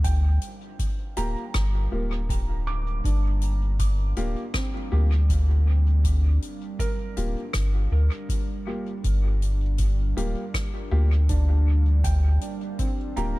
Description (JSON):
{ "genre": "ambient dub", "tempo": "80 BPM", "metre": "4/4", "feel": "swing 55% on 16ths", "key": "G minor", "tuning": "A4 = 441 Hz", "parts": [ { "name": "warm analog pad", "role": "sustained chords", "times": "0.0-13.4 s", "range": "G3 to F5", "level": "-38 LUFS", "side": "right 2 dB", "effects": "chorus" }, { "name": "felt-muted upright piano", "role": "arpeggios", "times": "0.0-13.4 s", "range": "Bb3 to D6", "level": "-37 LUFS", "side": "right 4 dB", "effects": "tape echo" }, { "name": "soft dub sub bass", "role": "bass", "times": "0.0-13.3 s", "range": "D1 to D2", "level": "-21 LUFS", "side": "equal", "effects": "none" }, { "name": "electronic kick drum", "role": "drums", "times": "0.0-13.0 s", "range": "none", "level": "-28 LUFS", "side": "equal", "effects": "none" }, { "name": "soft-mallet drum kit", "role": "drums", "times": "0.0-13.3 s", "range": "hi-hat, rim click", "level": "-37 LUFS", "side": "left 2 dB", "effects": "dub echo" }, { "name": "dark upright piano", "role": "stabs", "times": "1.2-13.4 s", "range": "Bb3 to G4", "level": "-36 LUFS", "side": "left 2 dB", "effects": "vintage 12-bit sampler grit, dub echo" } ], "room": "studio reverb", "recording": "echo-heavy mix", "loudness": "-22 LUFS", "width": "side -20 dB against mid", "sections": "0.0-13.4 A section", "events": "fade-in on analog synth pad 0.0-13.4", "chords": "0.0 Gm7" }